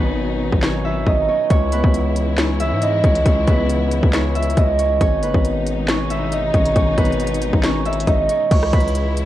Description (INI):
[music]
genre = hip hop, trap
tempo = 137 BPM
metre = 4/4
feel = half-time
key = C# minor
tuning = A4 = 440 Hz
[part]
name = Celtic harp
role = melody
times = 0.0-9.3 s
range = B3 to C#6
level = -20 LUFS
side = right 1 dB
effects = cassette tape
[part]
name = dark symphonic string section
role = sustained chords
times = 0.0-9.3 s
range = B2 to E4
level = -27 LUFS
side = left 1 dB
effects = cassette tape
[part]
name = distorted 808-style bass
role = bass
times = 0.0-9.3 s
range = F#1 to G#2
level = -20 LUFS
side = equal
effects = distortion
[part]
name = trap drum kit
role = drums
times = 0.5-9.3 s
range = crash cymbal, handclaps, hi-hat, kick drum, rim click, snare drum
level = -19 LUFS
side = equal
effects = cassette tape
[sound]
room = light reverb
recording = home recording on cassette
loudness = -15 LUFS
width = side -13 dB against mid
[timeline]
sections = 0.0-8.5 A section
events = break 0.0-1.5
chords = 0.0 G#m; 1.5 C#m; 5.0 G#m; 8.5 C#m